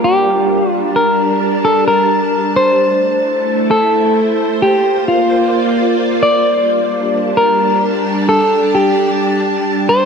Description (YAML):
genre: IDM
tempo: 131 BPM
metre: 4/4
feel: straight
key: G minor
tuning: A4 = 440 Hz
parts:
  - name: semi-hollow electric guitar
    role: melody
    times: 0.0-10.1 s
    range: F4 to D5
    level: -13 LUFS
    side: left 1 dB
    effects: dub echo
  - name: soft string machine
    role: sustained chords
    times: 0.0-10.1 s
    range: G3 to A5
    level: -16 LUFS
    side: equal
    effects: ensemble chorus
room: moderate plate reverb, RT60 3.2 s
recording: echo-heavy mix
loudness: -11 LUFS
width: side -6 dB against mid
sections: 0.0-10.1 A section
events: none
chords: 0.0 Gm; 2.8 Am; 4.6 Bb; 6.5 Gm